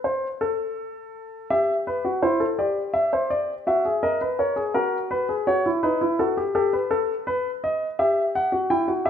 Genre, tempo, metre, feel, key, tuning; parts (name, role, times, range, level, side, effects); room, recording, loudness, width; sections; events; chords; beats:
classical, baroque-style 4-part fugue for grand piano; 55 BPM (dotted quarters); 12/8; straight; A4 = 445 Hz
warm baby grand piano; solo; 0.0-9.1 s; D#4 to G5; -21 LUFS; left 1 dB
moderate recital hall reverb, RT60 1.4 s; -21 LUFS; side -8 dB against mid
0.0-9.1 A section
0.0 N.C.; 1.5 Em; 3.7 F#7; 5.8 B7/D#; 8.0 Em
0.40 | 1.50 2.59 3.67 4.75 | 5.83 6.92 8.00 9.07